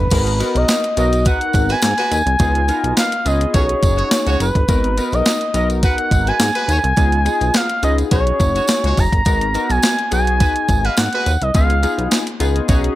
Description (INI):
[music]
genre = early-eighties boogie funk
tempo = 105 BPM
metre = 4/4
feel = straight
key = G# dorian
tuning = A4 = 441 Hz
[part]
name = expressive synth lead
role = melody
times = 0.0-12.1 s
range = B4 to A#5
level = -19 LUFS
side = equal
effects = chorus, slapback echo
[part]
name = chorused synth bass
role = bass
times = 0.0-12.9 s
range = F#1 to G#2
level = -18 LUFS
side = equal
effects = none
[part]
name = chorused polysynth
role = accompaniment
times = 0.1-13.0 s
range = B3 to A#4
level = -23 LUFS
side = left 3 dB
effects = none
[part]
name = crisp 8-bit digital drum machine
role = drums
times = 0.1-13.0 s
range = crash cymbal, hi-hat, kick drum, snare drum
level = -17 LUFS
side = equal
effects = overdrive, gated reverb
[part]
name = tambourine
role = percussion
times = 0.1-12.8 s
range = none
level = -30 LUFS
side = right 3 dB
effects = none
[part]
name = warm horn section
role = second line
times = 1.3-12.8 s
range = G#3 to C#5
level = -25 LUFS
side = right 2 dB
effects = none
[sound]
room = light reverb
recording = none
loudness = -14 LUFS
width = side -15 dB against mid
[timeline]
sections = 0.1-13.0 A section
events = none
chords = 0.1 G#m7; 2.4 C#7; 3.5 B69; 4.7 G#m7; 7.0 C#7; 8.1 B69; 9.3 G#m7; 11.5 C#7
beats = | 0.12 0.69 1.26 1.83 | 2.40 2.97 3.54 4.12 | 4.69 5.26 5.83 6.40 | 6.97 7.54 8.12 8.69 | 9.26 9.83 10.40 10.97 | 11.54 12.12 12.69